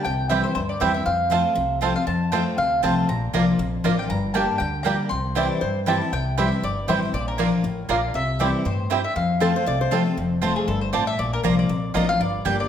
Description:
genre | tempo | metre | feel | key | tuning
bluegrass | 237 BPM | 4/4 | swing 56% on 8ths | F major | A4 = 440 Hz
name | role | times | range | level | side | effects
mandolin | melody | 0.0-12.7 s | Ab4 to C6 | -26 LUFS | left 1 dB | none
picked steel-string acoustic guitar | accompaniment | 0.0-12.7 s | F2 to G4 | -24 LUFS | left 2 dB | none
upright bass | bass | 0.1-12.7 s | F1 to G2 | -28 LUFS | equal | none
bluegrass banjo | melody | 0.3-10.0 s | Bb3 to G4 | -30 LUFS | right 6 dB | none
mandolin | stabs | 0.3-12.6 s | Bb3 to Bb5 | -28 LUFS | right 6 dB | none
lap resonator guitar | second line | 5.4-5.8, 9.4-10.2 s | A4 to D5 | -28 LUFS | left 3 dB | none
room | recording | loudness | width
wet large studio reverb, RT60 1.4 s | none | -20 LUFS | side -9 dB against mid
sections
0.0-10.2 A section; 10.2-12.7 B section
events
mandolin solo 10.2-12.7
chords
0.1 C; 1.1 F; 3.1 Bb; 4.1 Gm; 5.1 C; 7.1 Bb; 8.1 C; 9.2 F; 11.2 Bb

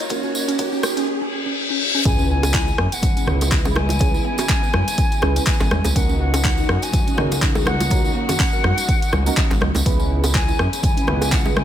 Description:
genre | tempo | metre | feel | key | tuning
afro house | 123 BPM | 4/4 | swing 57% on 16ths | C# dorian | A4 = 440 Hz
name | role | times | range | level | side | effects
mellow hollow silver concert flute | melody | 0.0-11.6 s | C#5 to B5 | -27 LUFS | left 2 dB | dub echo
dark studio string section | sustained chords | 0.0-11.6 s | C#3 to D#5 | -32 LUFS | left 2 dB | sidechain pumping
deep mellow chord stab | stabs | 0.0-11.6 s | A#3 to D#5 | -28 LUFS | right 4 dB | chorus, phaser, sidechain pumping, dub echo
deep house drum kit | drums | 0.0-11.6 s | handclaps, hi-hat, rim click | -25 LUFS | equal | studio reverb
tambourine | percussion | 0.0-11.5 s | none | -30 LUFS | right 3 dB | none
riser, reverse cymbal and sub drop | sound effects | 0.0-4.0 s | none | -24 LUFS | left 2 dB | none
electronic kick drum | drums | 0.1-11.4 s | none | -20 LUFS | equal | high-pass filter on kick, studio reverb
mallet-like synth pluck | arpeggios | 0.2-11.6 s | G#3 to C#5 | -28 LUFS | equal | chorus, phaser, sidechain pumping, dub echo
smooth gliding synth bass | bass | 2.1-11.6 s | G#1 to F#2 | -21 LUFS | equal | sidechain pumping
bongos | percussion | 2.4-11.6 s | none | -28 LUFS | right 3 dB | none
congas | percussion | 3.0-11.6 s | none | -29 LUFS | left 3 dB | none
room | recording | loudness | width
light reverb, small room ambience | none | -16 LUFS | side -10 dB against mid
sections
0.0-2.1 A section; 2.1-11.6 B section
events
build-up 0.0-2.1; riser 0.0-1.1; filter sweep on synth pluck 0.0-2.1; filter sweep on synth stab 0.0-2.1; reverse cymbal 1.1-2.1; drop 2.1-11.6; impact 2.1-4.0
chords
0.0 F#6; 2.1 C#m7; 6.0 F#6/C#; 9.9 C#m7

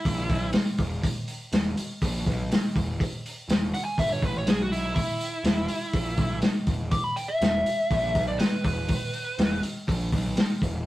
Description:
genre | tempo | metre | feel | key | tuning
blues rock power trio and southern rock | 122 BPM | 4/4 | straight | unclear | A4 = 441 Hz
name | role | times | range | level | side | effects
biting lead guitar | melody | 0.0-0.5, 3.7-9.6 s | E4 to D6 | -28 LUFS | equal | overdrive
fuzz picked electric bass | bass | 0.1-10.8 s | E1 to B1 | -32 LUFS | equal | overdrive
vintage drum kit | drums | 0.1-10.7 s | hi-hat, kick drum, snare drum | -25 LUFS | equal | none
room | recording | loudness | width
light reverb | rough rehearsal-room recording | -24 LUFS | side -16 dB against mid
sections
0.0-10.9 A section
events
lead electric guitar solo 0.0-10.9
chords
0.0 E5

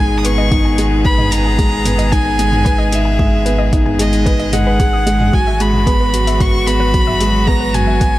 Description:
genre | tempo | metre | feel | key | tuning
piano and strings electronica | 112 BPM | 4/4 | straight | G# minor | A4 = 440 Hz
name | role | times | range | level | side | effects
warm violin | melody | 0.0-8.2 s | D#5 to D#6 | -19 LUFS | equal | none
rich string quartet | sustained chords | 0.0-8.2 s | B2 to G#4 | -24 LUFS | left 1 dB | sidechain pumping
warbly dusty pluck | arpeggios | 0.0-8.1 s | F#4 to D#6 | -27 LUFS | left 3 dB | chorus, sidechain pumping, digital delay
felt-muted upright piano | riff | 0.0-8.2 s | F#3 to B4 | -18 LUFS | equal | none
warm sub bass | bass | 0.0-8.2 s | G#1 | -18 LUFS | equal | tube saturation, sidechain pumping
deep house drum kit | drums | 0.2-8.1 s | hi-hat, toms | -23 LUFS | equal | overdrive
electronic kick drum | drums | 0.5-8.1 s | none | -15 LUFS | equal | overdrive
room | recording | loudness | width
digital ambience | none | -12 LUFS | side -16 dB against mid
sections
0.0-8.2 A section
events
none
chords
0.0 G#m; 5.3 Eadd9/G#

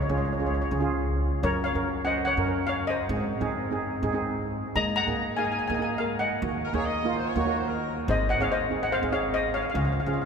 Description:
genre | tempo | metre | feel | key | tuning
calypso | 144 BPM | 4/4 | straight | unclear | A4 = 440 Hz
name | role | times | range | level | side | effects
steel pan | melody | 0.0-10.3 s | Bb4 to Bb5 | -28 LUFS | left 2 dB | none
upright bass | bass | 0.0-10.3 s | Ab1 to Ab2 | -30 LUFS | equal | none
steel pan | accompaniment | 0.1-10.3 s | Bb3 to C5 | -29 LUFS | right 3 dB | none
warm horn section | second line | 6.6-8.0 s | Bb4 to Eb5 | -35 LUFS | left 3 dB | none
room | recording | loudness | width
wet cathedral reverb, RT60 6.5 s | recorded in a church or concert hall | -24 LUFS | side -6 dB against mid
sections
0.0-10.3 A section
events
none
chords
0.0 Db; 1.4 Gbmaj7; 3.1 Ab; 4.8 Absus2; 6.4 Ebm; 8.1 Ab; 9.7 Db

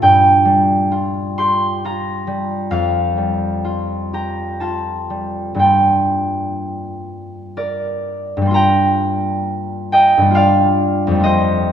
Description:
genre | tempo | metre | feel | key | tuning
classical, solo harp piece | 59-71 BPM | 3/4 | rubato | G minor | A4 = 440 Hz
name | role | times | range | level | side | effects
concert harp | solo | 0.0-11.7 s | F2 to C6 | -14 LUFS | equal | none
room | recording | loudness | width
moderate scoring stage reverb, RT60 1.6 s | none | -14 LUFS | side -9 dB against mid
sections
0.0-8.5 A section; 8.5-11.7 B section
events
none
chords
0.0 Gm7; 2.7 Fadd9; 5.6 Gm7

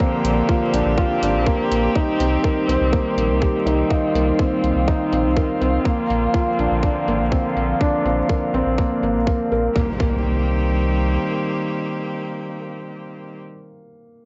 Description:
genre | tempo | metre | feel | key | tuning
piano and strings electronica | 123 BPM | 4/4 | straight | C minor | A4 = 439 Hz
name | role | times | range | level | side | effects
muted string quartet | sustained chords | 0.0-13.4 s | D3 to G4 | -26 LUFS | equal | sidechain pumping, low-pass filter
felt-muted upright piano | riff | 0.0-14.3 s | Bb3 to Bb4 | -24 LUFS | equal | analog delay
electronic kick drum | drums | 0.0-10.1 s | none | -24 LUFS | equal | overdrive, studio reverb, cassette tape
round analog bass | bass | 0.2-11.2 s | Ab1 to C2 | -25 LUFS | equal | sidechain pumping
electronic hi-hat | drums | 0.2-9.6 s | none | -38 LUFS | equal | low-pass filter on cymbals, studio reverb, cassette tape, low-pass filter on hats
impact | sound effects | 9.8-13.5 s | none | -35 LUFS | equal | none
room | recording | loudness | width
moderate small room reverb, RT60 0.6 s | home recording on cassette, nothing above 7.9 kHz | -20 LUFS | mono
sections
0.0-9.8 A section; 9.8-13.7 B section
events
filter sweep on string quartet 0.0-9.8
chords
0.0 Bbadd9; 1.9 Cm7; 5.8 Bbadd9; 9.8 Cm7

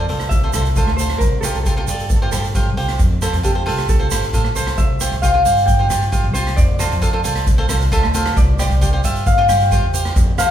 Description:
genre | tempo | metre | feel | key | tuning
calypso | 134 BPM | 4/4 | straight | F major | A4 = 445 Hz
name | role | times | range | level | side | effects
Celtic harp | melody | 0.0-10.5 s | G4 to G5 | -21 LUFS | left 1 dB | none
cavaquinho | accompaniment | 0.0-10.5 s | F4 to F5 | -23 LUFS | right 3 dB | none
upright bass | bass | 0.0-10.5 s | G1 to G2 | -20 LUFS | equal | none
street-band drum kit | drums | 0.1-10.5 s | hi-hat, kick drum, rim click | -18 LUFS | equal | none
tube shaker | percussion | 0.2-10.5 s | none | -29 LUFS | right 7 dB | none
room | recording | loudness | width
moderate large studio reverb, RT60 0.8 s | band playing live in one room | -14 LUFS | side -10 dB against mid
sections
0.0-10.5 A section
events
harp solo 0.0-10.5; cavaquinho fill 7.5-8.4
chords
0.0 Fmaj7; 1.2 Csus4; 3.0 F; 4.8 Csus4; 6.6 F; 8.4 Csus4

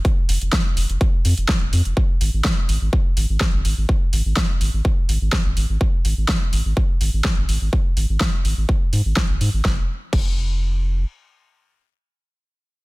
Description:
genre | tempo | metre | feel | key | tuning
progressive house | 125 BPM | 4/4 | straight | unclear | A4 = 439 Hz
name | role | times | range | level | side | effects
big-room dance drum kit | drums | 0.0-10.3 s | crash cymbal, hi-hat, snare drum | -25 LUFS | equal | overdrive, studio reverb
electronic kick drum | drums | 0.0-10.3 s | none | -19 LUFS | equal | overdrive, studio reverb
saturated sub bass | bass | 0.3-11.0 s | Eb1 to Ab2 | -19 LUFS | equal | sidechain pumping
room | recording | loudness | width
digital ambience | none | -17 LUFS | side -22 dB against mid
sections
0.0-9.6 A section; 9.6-12.8 B section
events
none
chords
none

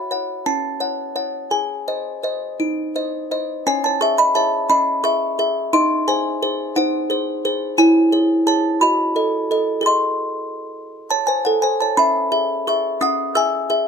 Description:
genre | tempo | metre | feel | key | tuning
classical, lullaby for music box | 58 BPM (dotted quarters) | 6/8 | straight | C# minor | A4 = 440 Hz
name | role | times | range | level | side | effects
music box | solo | 0.0-13.9 s | C#4 to E6 | -17 LUFS | equal | none
room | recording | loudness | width
little or no reverb | close, detailed microphones, lossy compression artefacts | -17 LUFS | side -6 dB against mid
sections
0.0-3.7 A section; 3.7-13.9 B section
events
none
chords
0.0 F#m; 1.5 G#; 3.7 C#m; 5.7 G#7/D#; 7.8 C#m/E; 8.8 D#dim/F#; 9.8 G#; 12.0 C#m

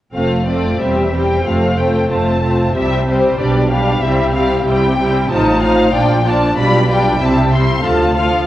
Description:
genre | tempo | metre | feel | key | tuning
quick classical-period movement for string orchestra | 93 BPM | 2/4 | rubato | F major | A4 = 443 Hz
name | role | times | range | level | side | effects
warm studio violin section | melody | 0.1-8.5 s | C5 to C6 | -20 LUFS | left 3 dB | none
warm studio violin section | second line | 0.1-8.5 s | E4 to F5 | -18 LUFS | left 1 dB | none
warm studio viola section | accompaniment | 0.1-8.5 s | F3 to F4 | -17 LUFS | equal | none
warm studio cello section | bass | 0.1-8.4 s | D2 to C3 | -21 LUFS | right 2 dB | none
warm studio double bass section | bass | 0.1-8.4 s | E1 to D2 | -19 LUFS | right 2 dB | none
room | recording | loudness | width
wet concert hall reverb, RT60 2.0 s | worn, warbling old tape, cassette tape, warbly pitch drift | -12 LUFS | side -14 dB against mid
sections
0.1-8.5 A section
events
none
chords
0.1 F; 0.8 C/E; 1.5 F; 2.8 C; 3.4 G/B; 4.0 C; 5.3 F7/A; 6.0 Bbmaj7; 6.6 G7/B; 7.2 C; 7.9 Dm

